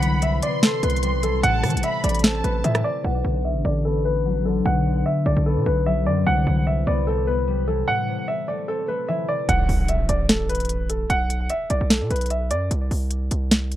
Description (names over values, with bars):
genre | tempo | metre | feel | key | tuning
hip hop, trap | 149 BPM | 4/4 | half-time | B phrygian | A4 = 440 Hz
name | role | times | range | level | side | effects
dark concert grand piano | melody | 0.0-12.7 s | A4 to F#5 | -25 LUFS | right 1 dB | low-pass filter, digital delay
warm studio violin section | second line | 0.0-2.6 s | A5 to C6 | -29 LUFS | equal | digital delay
concert harp | accompaniment | 0.0-12.2 s | A2 to C4 | -24 LUFS | left 3 dB | low-pass filter
distorted 808-style bass | bass | 0.0-13.8 s | A1 to E3 | -23 LUFS | equal | distortion
trap drum kit | drums | 0.0-2.8, 9.5-13.8 s | hi-hat, rim click, snare drum | -21 LUFS | equal | none
impact | sound effects | 9.5-11.1 s | none | -26 LUFS | right 1 dB | none
room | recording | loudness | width
little or no reverb | dark, warm production | -19 LUFS | side -13 dB against mid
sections
0.0-3.0 A section; 3.0-9.5 B section; 9.5-13.8 C section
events
filter sweep 3.0-9.5; break 7.9-9.5; impact 9.5-11.1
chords
0.0 Cmaj7; 1.4 Am; 3.0 Bm7; 6.3 Cmaj7; 7.9 Am; 9.5 B5; 12.7 N.C.